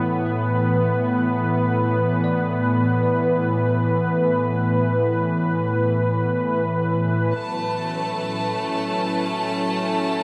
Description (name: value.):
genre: ambient.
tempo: free time.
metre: none.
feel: none.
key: unclear.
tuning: A4 = 440 Hz.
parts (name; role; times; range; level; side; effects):
warm analog pad; sustained chords; 0.0-10.2 s; A2 to B4; -22 LUFS; equal; chorus, shimmer reverb.
bell-like tine electric piano; arpeggios; 0.0-7.4 s; B4 to D5; -43 LUFS; equal; none.
clear studio violin section; texture; 7.4-10.2 s; A3 to A5; -27 LUFS; equal; shimmer reverb.
room: wet huge ambient reverb, RT60 8.6 s.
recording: none.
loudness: -22 LUFS.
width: mono.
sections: 0.0-7.4 A section; 7.4-10.2 B section.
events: none.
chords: 0.0 Asus2; 7.4 F#m7.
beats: free time.